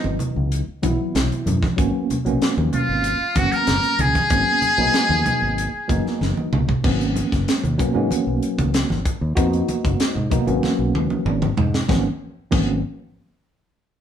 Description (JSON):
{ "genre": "electric jazz fusion", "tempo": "95 BPM", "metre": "4/4", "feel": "straight", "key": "G# minor", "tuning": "A4 = 440 Hz", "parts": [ { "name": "trumpet with metal mute", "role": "melody", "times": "0.0-6.2 s", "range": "D#4 to A#4", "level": "-20 LUFS", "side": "left 2 dB", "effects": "none" }, { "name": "breathy jazz flute", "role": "second line", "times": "0.0-6.2 s", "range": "D#5 to A#5", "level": "-27 LUFS", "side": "right 3 dB", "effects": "none" }, { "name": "tine electric piano", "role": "accompaniment", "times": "0.0-12.8 s", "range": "E3 to F#4", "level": "-24 LUFS", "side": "equal", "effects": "overdrive, medium stereo tremolo" }, { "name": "fingered electric bass", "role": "bass", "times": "0.0-12.8 s", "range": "F#1 to G#2", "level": "-24 LUFS", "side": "equal", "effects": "none" }, { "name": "congas", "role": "percussion", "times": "0.0-12.8 s", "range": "none", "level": "-26 LUFS", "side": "right 2 dB", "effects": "none" }, { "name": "tight funk drum kit", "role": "drums", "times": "0.2-12.7 s", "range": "crash cymbal, hi-hat, kick drum, snare drum, toms", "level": "-23 LUFS", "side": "equal", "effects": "none" } ], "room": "moderate studio reverb, RT60 0.8 s", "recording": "band playing live in one room", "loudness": "-18 LUFS", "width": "side -9 dB against mid", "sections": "0.0-6.8 A section; 6.8-11.9 B section; 11.9-14.0 C section", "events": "drum fill 6.2-6.8, 10.6-11.9", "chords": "0.0 C#m11; 1.8 G#m11" }